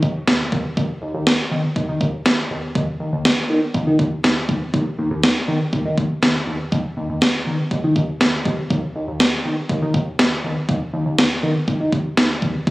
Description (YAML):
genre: synth-pop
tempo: 121 BPM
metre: 4/4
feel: straight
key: unclear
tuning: A4 = 440 Hz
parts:
  - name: chorused synth bass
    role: bass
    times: 0.0-12.7 s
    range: Eb2 to Eb3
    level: -21 LUFS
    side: equal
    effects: none
  - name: gated 80s digital drum machine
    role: drums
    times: 0.0-12.7 s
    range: kick drum, snare drum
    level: -19 LUFS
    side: equal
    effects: gated reverb, gated reverb snare
room: light reverb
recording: recorded on a phone in the room, club reverb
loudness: -17 LUFS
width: side -19 dB against mid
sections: 0.0-12.7 A section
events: none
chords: none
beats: 0.27 | 0.77 1.27 1.76 2.26 | 2.75 3.25 3.75 4.24 | 4.74 5.23 5.73 6.22 | 6.72 7.22 7.71 8.21 | 8.70 9.20 9.70 10.19 | 10.69 11.18 11.68 12.18 | 12.67